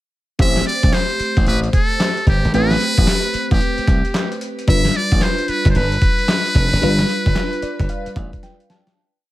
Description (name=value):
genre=R&B, new jack swing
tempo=112 BPM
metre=4/4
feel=swing 64% on 16ths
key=A minor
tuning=A4 = 438 Hz
part: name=trumpet with metal mute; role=melody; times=0.4-8.4 s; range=G4 to E5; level=-21 LUFS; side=equal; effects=none
part: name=FM electric piano with soft pad layer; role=accompaniment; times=0.4-9.0 s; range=G3 to A5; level=-23 LUFS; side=equal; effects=chorus
part: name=glassy slap bass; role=bass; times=0.4-8.3 s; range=F1 to C2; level=-19 LUFS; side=equal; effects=none
part: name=dusty soul sampler-style drum kit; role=drums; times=0.4-9.0 s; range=handclaps, hi-hat, kick drum, snare drum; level=-18 LUFS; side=equal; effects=overdrive
room=little or no reverb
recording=none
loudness=-15 LUFS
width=side -16 dB against mid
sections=0.4-9.0 verse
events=fade-out 6.8-9.0; FM electric piano fill 7.4-9.0; drum fill 8.4-9.0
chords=0.4 Am9; 4.7 G7